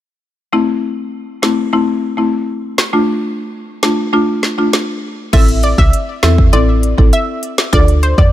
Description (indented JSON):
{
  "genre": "dancehall",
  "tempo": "100 BPM",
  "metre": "4/4",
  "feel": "straight",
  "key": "unclear",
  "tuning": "A4 = 440 Hz",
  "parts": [
    { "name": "buzzing marimba with medium mallets", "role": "accompaniment", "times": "0.5-8.3 s", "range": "A3 to A4", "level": "-16 LUFS", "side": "left 2 dB", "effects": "none" },
    { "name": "afro-pop drum kit", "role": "drums", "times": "1.4-8.3 s", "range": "crash cymbal, hi-hat, kick drum, snare drum", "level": "-14 LUFS", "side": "equal", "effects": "none" },
    { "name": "analog pluck", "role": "melody", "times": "5.3-8.3 s", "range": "C5 to E5", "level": "-18 LUFS", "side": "right 1 dB", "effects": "chorus, ping-pong delay" },
    { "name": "woody FM bass", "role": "bass", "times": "5.3-8.3 s", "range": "A1 to F2", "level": "-12 LUFS", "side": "equal", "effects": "none" }
  ],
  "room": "little or no reverb",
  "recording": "none",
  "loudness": "-11 LUFS",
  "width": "side -13 dB against mid",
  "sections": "0.5-5.3 A section; 5.3-8.3 B section",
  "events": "none",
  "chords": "0.5 Am; 2.9 Dm; 5.3 Am; 7.7 Dm"
}